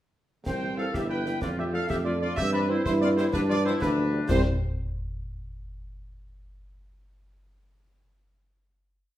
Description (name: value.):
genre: military-style march for wind band.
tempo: 125 BPM (dotted quarters).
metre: 6/8.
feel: straight.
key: C major.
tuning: A4 = 440 Hz.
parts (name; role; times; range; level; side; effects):
clear trumpet section; melody; 0.5-4.4 s; B4 to G5; -31 LUFS; right 1 dB; none.
warm woodwind section; second line; 0.5-4.4 s; D4 to C5; -32 LUFS; left 2 dB; none.
mellow trombone section; sustained chords; 0.5-4.4 s; E3 to F4; -32 LUFS; right 1 dB; none.
warm tuba; bass; 0.5-4.4 s; G1 to G2; -28 LUFS; right 1 dB; none.
concert snare drum, clash cymbals and concert bass drum; drums; 0.5-4.5 s; none; -32 LUFS; equal; none.
mellow French horn section; accompaniment; 0.6-4.4 s; E3 to E4; -35 LUFS; left 3 dB; none.
room: wet large studio reverb, RT60 0.9 s.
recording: heard from further back in the room.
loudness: -24 LUFS.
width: side -13 dB against mid.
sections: 0.5-4.3 A section; 4.3-5.2 final chord.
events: none.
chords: 0.5 C; 1.4 Dm/F; 2.4 C/G; 3.3 G7; 4.3 C.